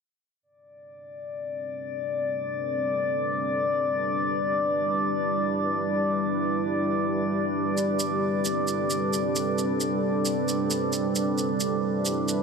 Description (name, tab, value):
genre	future garage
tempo	free time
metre	none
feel	none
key	A minor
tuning	A4 = 440 Hz
part	deep dark ambient pad	sustained chords	1.6-12.4 s	G3 to B4	-27 LUFS	right 1 dB	chorus, built-in reverb
part	drifting glass-harmonics texture	texture	1.1-12.4 s	D5	-28 LUFS	left 2 dB	chorus, built-in reverb
part	shaker	drums	7.8-12.3 s	none	-31 LUFS	right 3 dB	small room ambience
room	moderate huge ambient reverb, RT60 4.6 s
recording	heavily compressed radio sound, multiband compression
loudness	-24 LUFS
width	side -5 dB against mid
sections	0.4-12.4 A section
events	fade-in on ambient pad 0.4-12.4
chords	0.4 Am11; 4.0 Em7; 7.6 Am11; 11.2 Em7